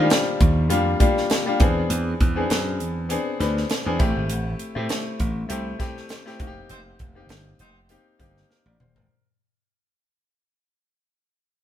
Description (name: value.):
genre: polished 1980s jazz-funk pop.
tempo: 100 BPM.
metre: 4/4.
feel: swing 54% on 16ths.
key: unclear.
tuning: A4 = 442 Hz.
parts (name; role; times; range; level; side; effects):
clear grand piano; accompaniment; 0.0-9.2 s; F3 to D5; -25 LUFS; left 3 dB; none.
slap bass; bass; 0.0-9.1 s; Eb1 to A2; -24 LUFS; right 1 dB; none.
crisp fusion drum kit; drums; 0.1-9.1 s; hi-hat, kick drum, snare drum, toms; -22 LUFS; right 1 dB; none.
mellow horn section; second line; 6.7-7.8 s; G3 to C5; -51 LUFS; right 2 dB; none.
room: light reverb.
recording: band playing live in one room.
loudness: -20 LUFS.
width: side -11 dB against mid.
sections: 0.0-9.1 A section.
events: fade-out 0.0-9.1; band accent 6.7-9.1; drum fill 8.5-9.1.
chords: 0.0 Ebmaj7; 1.6 E7b13; 4.0 Am7; 6.4 F9sus4.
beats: 0.10 0.70 1.30 | 1.90 2.50 3.10 3.70 | 4.30 4.90 5.50 6.10 | 6.70 7.30 7.90 8.49.